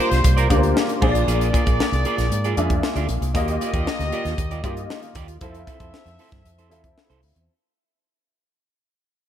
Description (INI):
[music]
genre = polished 1980s jazz-funk pop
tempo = 116 BPM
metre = 4/4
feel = straight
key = unclear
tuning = A4 = 439 Hz
[part]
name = warm horn section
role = second line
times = 0.0-7.2 s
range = G3 to E5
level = -28 LUFS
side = left 2 dB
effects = none
[part]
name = warm baby grand piano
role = accompaniment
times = 0.0-7.5 s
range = Bb3 to E5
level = -25 LUFS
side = left 2 dB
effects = ensemble chorus
[part]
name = electric guitar at the edge of break-up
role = riff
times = 0.0-7.4 s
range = E4 to D5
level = -29 LUFS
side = right 8 dB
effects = wide subtle chorus
[part]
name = vintage muted fingered electric bass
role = bass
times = 0.1-7.5 s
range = Bb1 to Ab2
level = -23 LUFS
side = equal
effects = none
[part]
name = crisp fusion drum kit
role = drums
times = 0.1-7.5 s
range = crash cymbal, hi-hat, kick drum, snare drum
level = -23 LUFS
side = equal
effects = gated reverb
[sound]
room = little or no reverb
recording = none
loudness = -18 LUFS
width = side -10 dB against mid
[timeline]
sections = 0.0-7.5 A section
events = fade-out 0.0-7.5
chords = 0.0 C9sus4; 1.0 Bb7; 3.3 Ebmaj9; 5.4 Fmaj7